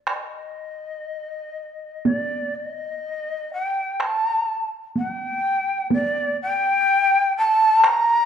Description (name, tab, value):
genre	japanese traditional, Japanese chamber music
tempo	62 BPM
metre	4/4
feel	rubato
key	unclear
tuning	A4 = 440 Hz
part	breathy shakuhachi	melody	0.1-8.3 s	D5 to Bb5	-20 LUFS	equal	none
part	taiko ensemble	percussion	0.1-8.1 s	none	-24 LUFS	right 2 dB	none
room	moderate recital hall reverb, RT60 1.6 s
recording	minimal, uncompressed stereo recording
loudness	-19 LUFS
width	side -8 dB against mid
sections	0.0-8.3 A section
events	none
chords	none